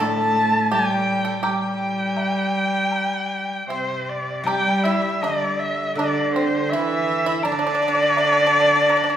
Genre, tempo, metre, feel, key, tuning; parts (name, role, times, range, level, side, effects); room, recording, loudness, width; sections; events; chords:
chinese traditional, Chinese chamber ensemble; 76-84 BPM; 4/4; rubato; G zhi mode; A4 = 439 Hz
warm erhu; melody; 0.0-9.2 s; C5 to A5; -21 LUFS; left 1 dB
pipa; second line; 0.0-9.2 s; C4 to A4; -27 LUFS; right 2 dB
rich cello; second line; 0.0-9.2 s; C3 to A3; -24 LUFS; right 1 dB
steel-string zither; accompaniment; 0.0-8.2 s; A2 to E4; -28 LUFS; right 1 dB
woodblock; percussion; 0.0-9.1 s; -32 LUFS; left 2 dB
wet recital hall reverb, RT60 1.4 s; recorded in a church or concert hall; -18 LUFS; side -10 dB against mid
0.0-4.5 A section; 4.5-9.2 B section